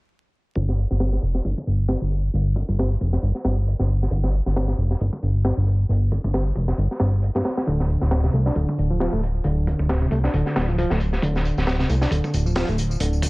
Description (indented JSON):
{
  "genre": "breakbeat, breaks",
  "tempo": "135 BPM",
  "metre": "4/4",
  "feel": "swing 56% on 16ths",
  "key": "unclear",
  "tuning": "A4 = 440 Hz",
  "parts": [
    { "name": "fat analog bass", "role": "bass", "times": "0.6-13.3 s", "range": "D1 to G2", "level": "-20 LUFS", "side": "equal", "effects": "none" },
    { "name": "crunchy breakbeat drum kit", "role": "drums", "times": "0.6-13.3 s", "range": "hi-hat, kick drum, snare drum", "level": "-27 LUFS", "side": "equal", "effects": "high-pass filter on kick, high-pass filter on hats, high-pass filter on snare, high-pass filter on room" },
    { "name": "tambourine", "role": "drums", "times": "0.6-13.3 s", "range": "none", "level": "-40 LUFS", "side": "left 2 dB", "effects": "overdrive" },
    { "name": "barky reed electric piano", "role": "riff", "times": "7.7-13.3 s", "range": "C3 to D4", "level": "-25 LUFS", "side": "equal", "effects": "overdrive, tape echo" }
  ],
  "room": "small room ambience",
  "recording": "vinyl crackle, low-pass filter",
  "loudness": "-19 LUFS",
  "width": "side -24 dB against mid",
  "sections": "0.6-13.3 A section",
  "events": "filter sweep on analog synth bass 0.6-13.3; filter sweep 0.6-13.3",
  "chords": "0.6 Fsus2; 7.7 D7(no3)"
}